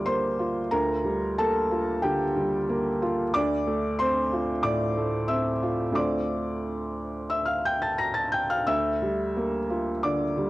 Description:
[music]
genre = neoclassical minimalist piano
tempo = 90 BPM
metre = 4/4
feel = rubato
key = unclear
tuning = A4 = 440 Hz
[part]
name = felt-muted upright piano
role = solo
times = 0.0-10.5 s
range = D2 to Bb6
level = -24 LUFS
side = equal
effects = cassette tape
[sound]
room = light reverb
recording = home recording on cassette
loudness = -24 LUFS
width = side -18 dB against mid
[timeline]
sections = 0.0-10.5 A section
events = none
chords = 0.0 Gm7/D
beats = 0.06 | 0.72 1.39 2.05 2.71 | 3.35 4.00 4.64 5.30 | 5.96 6.64 7.32 7.99 | 8.68 9.37 10.04

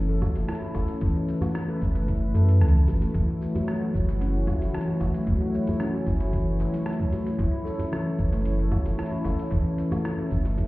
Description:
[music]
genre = organic downtempo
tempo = 113 BPM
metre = 4/4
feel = straight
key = unclear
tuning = A4 = 441 Hz
[part]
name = warm analog pad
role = sustained chords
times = 0.0-10.7 s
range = A3 to C#5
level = -31 LUFS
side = left 2 dB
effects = chorus, sidechain pumping
[part]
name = warm sub bass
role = bass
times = 0.0-10.7 s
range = F#1 to F#2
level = -24 LUFS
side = equal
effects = sidechain pumping
[part]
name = handpan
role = arpeggios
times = 0.1-10.7 s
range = E3 to A4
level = -29 LUFS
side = equal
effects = digital delay
[part]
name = dusty soul sampler-style drum kit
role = drums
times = 0.2-10.7 s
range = hi-hat, rim click, shaker, woodblock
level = -40 LUFS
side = left 1 dB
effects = studio ambience
[part]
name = electronic kick drum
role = drums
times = 0.2-10.7 s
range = none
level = -27 LUFS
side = equal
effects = studio ambience
[part]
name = djembe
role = percussion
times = 0.2-10.6 s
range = none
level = -35 LUFS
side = right 1 dB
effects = none
[sound]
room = light reverb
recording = heard muffled through a wall, stone room reverb, EQ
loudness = -23 LUFS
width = side -19 dB against mid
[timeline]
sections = 0.0-10.7 A section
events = none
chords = 0.0 A/F#; 3.1 F#m7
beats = 0.49 | 1.02 1.55 2.08 2.61 | 3.14 3.67 4.20 4.74 | 5.27 5.80 6.33 6.86 | 7.39 7.92 8.45 8.98 | 9.51 10.04 10.58

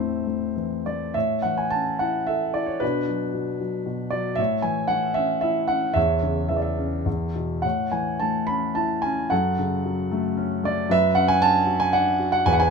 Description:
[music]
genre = classical, lyrical solo piano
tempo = 99-118 BPM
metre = 3/4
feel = rubato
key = A major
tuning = A4 = 439 Hz
[part]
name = warm concert grand piano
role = solo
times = 0.0-12.7 s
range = E2 to B5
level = -21 LUFS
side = equal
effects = none
[sound]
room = light reverb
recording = minimal, uncompressed stereo recording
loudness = -21 LUFS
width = side -5 dB against mid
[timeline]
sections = 0.0-1.2 A section; 1.2-12.7 B section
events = none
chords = 0.0 Am; 1.2 A; 2.8 Bm; 4.4 A; 6.0 C#m/E; 7.1 E5; 7.6 A; 9.3 F#m; 10.9 Bmadd9/F#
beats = 0.56 | 1.15 1.72 2.28 | 2.82 3.35 3.88 | 4.39 4.91 5.44 | 5.97 6.51 7.07 | 7.64 8.21 8.76 | 9.31 9.85 10.38 | 10.90 11.42 11.94 | 12.47

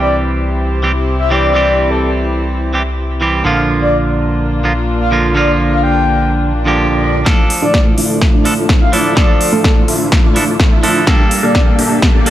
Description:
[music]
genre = EDM, festival progressive house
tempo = 126 BPM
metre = 4/4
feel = straight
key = D minor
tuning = A4 = 440 Hz
[part]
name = breathy flute-like synth lead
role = melody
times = 0.0-11.6 s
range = A4 to G5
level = -18 LUFS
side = left 2 dB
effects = wide subtle chorus, tape echo
[part]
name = clean electric guitar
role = accompaniment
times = 0.0-12.3 s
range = G2 to A4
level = -16 LUFS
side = right 3 dB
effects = sidechain pumping, tape echo
[part]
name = dark studio string section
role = sustained chords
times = 0.0-12.3 s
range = D2 to A4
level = -21 LUFS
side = left 2 dB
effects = sidechain pumping
[part]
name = fat analog bass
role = bass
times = 0.0-7.2 s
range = Bb1 to C2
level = -17 LUFS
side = equal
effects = sidechain pumping
[part]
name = swell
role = sound effects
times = 6.5-7.3 s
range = none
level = -24 LUFS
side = left 2 dB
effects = none
[part]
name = dense compressed supersaw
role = riff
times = 7.3-12.3 s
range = A3 to F5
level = -16 LUFS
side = right 1 dB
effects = sidechain pumping, low-pass filter, tape echo
[part]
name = big-room dance drum kit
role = drums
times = 7.3-12.3 s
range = hi-hat, snare drum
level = -18 LUFS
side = equal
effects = none
[part]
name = electronic kick drum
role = drums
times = 7.3-12.1 s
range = none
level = -12 LUFS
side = equal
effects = none
[sound]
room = light reverb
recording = none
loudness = -10 LUFS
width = side -13 dB against mid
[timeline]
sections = 0.0-7.3 A section; 7.3-12.3 B section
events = swell 6.5-7.3; build-up 7.3-12.3; drum fill 7.3-12.3; filter sweep on supersaw synth 7.3-12.3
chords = 0.0 C; 3.5 Bb; 7.3 Dmadd9; 11.1 Gmadd9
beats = 0.12 0.60 1.07 | 1.55 2.02 2.50 2.98 | 3.45 3.93 4.41 4.88 | 5.36 5.83 6.31 6.79 | 7.26 7.74 8.22 8.69 | 9.17 9.64 10.12 10.60 | 11.07 11.55 12.03

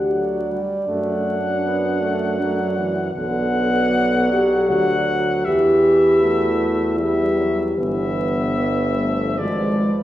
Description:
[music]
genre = classical, hymn-like piece for brass band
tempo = 78 BPM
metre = 3/4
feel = uneven beats, rubato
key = unclear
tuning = A4 = 440 Hz
[part]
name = clear cornet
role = melody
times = 0.0-9.9 s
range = D5 to F#5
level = -26 LUFS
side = left 4 dB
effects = none
[part]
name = mellow French horn section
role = second line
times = 0.0-10.0 s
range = B4 to D5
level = -27 LUFS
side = right 4 dB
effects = none
[part]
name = bright trombone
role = accompaniment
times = 0.0-10.0 s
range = D3 to B3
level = -29 LUFS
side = right 2 dB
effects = none
[part]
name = mellow euphonium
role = accompaniment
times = 0.0-9.9 s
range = G3 to G4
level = -20 LUFS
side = equal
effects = none
[part]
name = warm tuba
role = bass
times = 0.0-9.9 s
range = G1 to F#2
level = -24 LUFS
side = equal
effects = none
[sound]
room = wet recital hall reverb, RT60 1.7 s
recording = recorded in a church or concert hall, vinyl crackle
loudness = -17 LUFS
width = side -13 dB against mid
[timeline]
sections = 0.0-10.0 A section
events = none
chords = 0.0 D; 0.9 D/F#; 3.1 Bm; 5.5 Em; 7.8 Em/G; 9.4 G#dim7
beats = 0.13 | 0.89 1.64 2.39 | 3.15 3.92 4.70 | 5.46 6.22 6.98 | 7.78 8.58 9.40

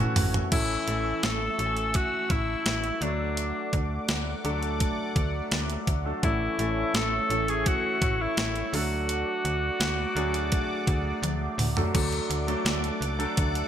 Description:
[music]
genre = 1980s-style pop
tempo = 84 BPM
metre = 4/4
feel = straight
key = unclear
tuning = A4 = 440 Hz
[part]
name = clear concert grand piano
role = accompaniment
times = 0.0-13.7 s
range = E3 to G#5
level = -32 LUFS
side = equal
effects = wide subtle chorus
[part]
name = sweeping resonant pad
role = sustained chords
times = 0.0-13.7 s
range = A3 to E6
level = -35 LUFS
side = right 2 dB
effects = chorus
[part]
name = slap-like FM bass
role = bass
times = 0.0-13.6 s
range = G#1 to D2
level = -31 LUFS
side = equal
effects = none
[part]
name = clean 12-bit digital drum machine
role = drums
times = 0.2-13.7 s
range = crash cymbal, hi-hat, kick drum, snare drum, toms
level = -28 LUFS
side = equal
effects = none
[part]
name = bright alto saxophone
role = melody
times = 0.5-11.2 s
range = D4 to A4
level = -29 LUFS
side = left 1 dB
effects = digital delay
[sound]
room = light reverb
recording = bright 1980s-style digital production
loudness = -24 LUFS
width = side -9 dB against mid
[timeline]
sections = 0.5-11.9 A section; 11.9-13.7 B section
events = drum fill 0.0-0.5, 11.2-11.9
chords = 0.0 F#m7; 0.5 A; 3.0 D; 6.2 A; 8.7 D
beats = | 0.52 1.23 1.95 2.66 | 3.38 4.09 4.80 5.52 | 6.23 6.95 7.66 8.38 | 9.09 9.80 10.52 11.23 | 11.95 12.66 13.38

